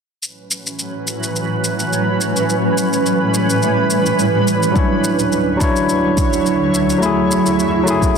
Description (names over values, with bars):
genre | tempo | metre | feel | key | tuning
sunset chillout | 106 BPM | 4/4 | swing 54% on 16ths | A major | A4 = 441 Hz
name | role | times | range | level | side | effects
shimmering ambient pad | sustained chords | 0.7-8.2 s | D2 to C#5 | -16 LUFS | right 1 dB | chorus, built-in reverb
shaker | drums | 0.2-8.2 s | none | -24 LUFS | left 1 dB | small room ambience
barky tine electric piano | accompaniment | 4.7-8.2 s | F#3 to C#5 | -16 LUFS | equal | auto-pan, digital delay
electronic kick drum | drums | 4.8-8.1 s | none | -17 LUFS | equal | small room ambience
room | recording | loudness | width
moderate plate reverb, RT60 1.9 s, digital ambience | dense, heavily limited modern master | -14 LUFS | side -6 dB against mid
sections
0.2-8.2 A section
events
none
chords
0.2 A69; 2.5 A9; 4.8 Dmaj9; 7.0 F#m9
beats
| 0.23 0.80 1.36 1.93 | 2.49 3.06 3.63 4.19 | 4.76 5.32 5.89 6.46 | 7.02 7.59 8.15